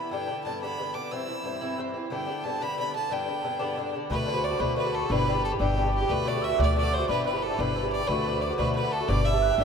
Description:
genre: celtic folk, Celtic jig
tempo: 120 BPM (dotted quarters)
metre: 6/8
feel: straight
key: G major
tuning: A4 = 440 Hz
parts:
  - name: clear fiddle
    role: melody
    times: 0.0-9.6 s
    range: G4 to E6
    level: -30 LUFS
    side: equal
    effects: none
  - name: Irish bouzouki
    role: accompaniment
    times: 0.0-9.6 s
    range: G2 to G4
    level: -29 LUFS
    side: left 2 dB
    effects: none
  - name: cimbalom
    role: second line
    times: 4.1-9.6 s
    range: G4 to E5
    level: -31 LUFS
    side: right 8 dB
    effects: none
  - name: mellow hollow wooden whistle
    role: second line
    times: 4.1-9.6 s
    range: G5 to F#6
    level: -35 LUFS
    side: left 3 dB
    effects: none
  - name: upright bass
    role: bass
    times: 4.1-9.6 s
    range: G1 to D2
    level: -29 LUFS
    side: equal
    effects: none
room: wet cathedral reverb, RT60 5.5 s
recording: in a vast, echoing space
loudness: -25 LUFS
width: side -6 dB against mid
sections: 0.0-4.1 A section; 4.1-9.6 B section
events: none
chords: 0.1 G; 1.1 C; 2.1 G; 4.1 D6; 5.1 G6; 6.1 D6; 7.1 G6; 8.1 D6; 9.1 G6

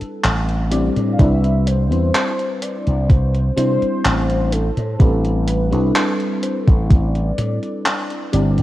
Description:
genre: vaporwave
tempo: 63 BPM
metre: 4/4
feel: straight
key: unclear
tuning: A4 = 441 Hz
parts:
  - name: warm velvety synth lead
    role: melody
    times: 0.0-8.3 s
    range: A4 to F5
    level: -26 LUFS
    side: left 1 dB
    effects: chorus, tape echo
  - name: FM electric piano with soft pad layer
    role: accompaniment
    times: 0.0-8.6 s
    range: G3 to D5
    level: -22 LUFS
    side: left 1 dB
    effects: analog chorus
  - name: slap bass with an envelope filter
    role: bass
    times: 0.0-8.6 s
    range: G1 to C3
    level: -18 LUFS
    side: equal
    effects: none
  - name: gated 80s digital drum machine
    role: drums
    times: 0.0-8.6 s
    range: handclaps, hi-hat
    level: -22 LUFS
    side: equal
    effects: gated reverb, overdrive
  - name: electronic kick drum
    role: drums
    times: 1.2-7.1 s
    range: none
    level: -13 LUFS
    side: equal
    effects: overdrive
room: moderate lush hall reverb, RT60 2.5 s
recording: rough home demo mix, cassette tape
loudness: -15 LUFS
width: side -15 dB against mid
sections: 0.0-8.6 A section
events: none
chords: 0.0 Am11

